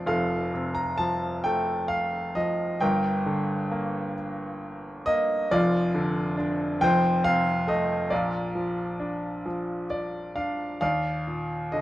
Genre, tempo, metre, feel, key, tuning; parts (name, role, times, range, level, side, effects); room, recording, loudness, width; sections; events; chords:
classical, lyrical solo piano; 45 BPM (dotted quarters); 6/8; uneven beats, rubato; Bb major; A4 = 441 Hz
bright grand piano; solo; 0.0-11.8 s; F1 to Bb5; -24 LUFS; equal
light reverb; dark, warm production; -24 LUFS; side -15 dB against mid
0.0-10.8 A section; 10.8-11.8 B section
grand piano fill 9.4-10.8
0.0 F; 2.8 Gm; 5.5 Dm/F; 6.8 F; 8.1 Bb; 10.8 Ebmaj7(no3)